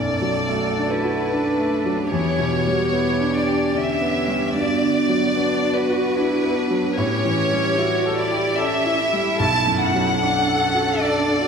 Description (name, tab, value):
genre	neoclassical piano and strings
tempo	74 BPM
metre	3/4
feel	rubato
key	B minor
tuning	A4 = 440 Hz
part	warm chamber violin section	melody	0.0-11.5 s	B4 to A5	-22 LUFS	left 1 dB	none
part	clear grand piano	accompaniment	0.0-11.5 s	B1 to A4	-22 LUFS	equal	none
part	warm viola	accompaniment	0.0-11.5 s	F#4 to A4	-27 LUFS	left 1 dB	none
part	dark cello	second line	0.5-11.5 s	B3 to F#4	-26 LUFS	right 4 dB	none
room	wet church reverb, RT60 2.6 s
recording	recorded in a church or concert hall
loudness	-18 LUFS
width	side -6 dB against mid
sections	0.0-11.5 A section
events	none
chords	0.0 Bm7; 2.1 Em7; 4.6 Gmaj7; 7.0 A7; 9.4 Bm7